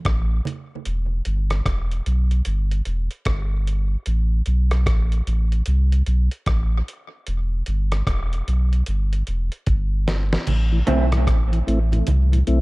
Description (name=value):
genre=dub reggae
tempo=75 BPM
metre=4/4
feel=swing 62% on 16ths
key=A minor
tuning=A4 = 442 Hz
part: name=warm sub bass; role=bass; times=0.1-12.6 s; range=E1 to C2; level=-19 LUFS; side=equal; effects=none
part: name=dusty soul sampler-style drum kit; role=drums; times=0.1-12.6 s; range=crash cymbal, hi-hat, kick drum, rim click, snare drum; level=-25 LUFS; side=equal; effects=none
part: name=congas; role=percussion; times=0.5-0.7, 10.5-12.3 s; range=none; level=-30 LUFS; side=right 5 dB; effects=tape echo
part: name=mellow tonewheel organ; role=accompaniment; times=10.7-12.6 s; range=A2 to E4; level=-25 LUFS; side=left 2 dB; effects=slow rotary speaker, tape echo
part: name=electric guitar through a small old amp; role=accompaniment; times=10.9-11.0 s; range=A3 to E4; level=-25 LUFS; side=right 3 dB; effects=tape echo
room=digital ambience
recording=dark, warm production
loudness=-19 LUFS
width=side -22 dB against mid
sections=0.0-10.5 A section; 10.5-12.6 B section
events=break 0.0-10.5; part muted 0.9-10.5; drum fill 9.7-10.5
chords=0.0 N.C.; 0.9 Em; 4.1 N.C.; 7.3 Em; 10.5 Am